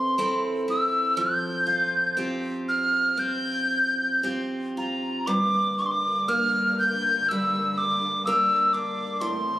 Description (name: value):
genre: celtic folk, Celtic slow air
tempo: 54-63 BPM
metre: 4/4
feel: rubato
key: G dorian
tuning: A4 = 441 Hz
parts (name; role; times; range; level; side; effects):
- mellow hollow tin whistle; melody; 0.0-9.6 s; Bb5 to G6; -23 LUFS; equal; none
- picked steel-string acoustic guitar; accompaniment; 0.0-9.6 s; G2 to Bb4; -29 LUFS; equal; none
- rich symphonic string section; sustained chords; 5.3-9.6 s; G2 to C4; -37 LUFS; equal; none
room: moderate recital hall reverb, RT60 1.8 s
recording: recorded on a phone in the room, club reverb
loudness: -22 LUFS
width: side -14 dB against mid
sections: 0.0-5.3 A section; 5.3-9.6 B section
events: none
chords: 0.0 Am/E; 1.2 Fsus2; 5.3 Gm